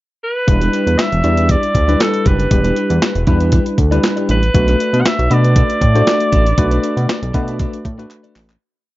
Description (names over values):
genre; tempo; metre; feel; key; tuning
early-eighties boogie funk; 118 BPM; 4/4; straight; E minor; A4 = 444 Hz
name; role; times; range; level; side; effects
bright alto saxophone; melody; 0.2-8.1 s; A4 to F#5; -19 LUFS; equal; none
tine electric piano; accompaniment; 0.5-8.5 s; F#3 to D5; -19 LUFS; left 1 dB; medium stereo tremolo
electric guitar at the edge of break-up; riff; 0.5-8.5 s; D4 to D5; -27 LUFS; right 3 dB; wide subtle chorus
chorused synth bass; bass; 0.5-8.6 s; E1 to B2; -15 LUFS; equal; none
clean 12-bit digital drum machine; drums; 0.5-8.6 s; handclaps, hi-hat, kick drum, snare drum; -16 LUFS; equal; none
room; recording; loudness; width
digital ambience; dark, warm production, nothing above 7.5 kHz; -12 LUFS; side -17 dB against mid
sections
0.0-0.5 pickup bar; 0.5-8.6 verse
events
fade-out 6.6-8.6; drum fill 8.1-8.6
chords
0.5 Em7; 4.5 Bm7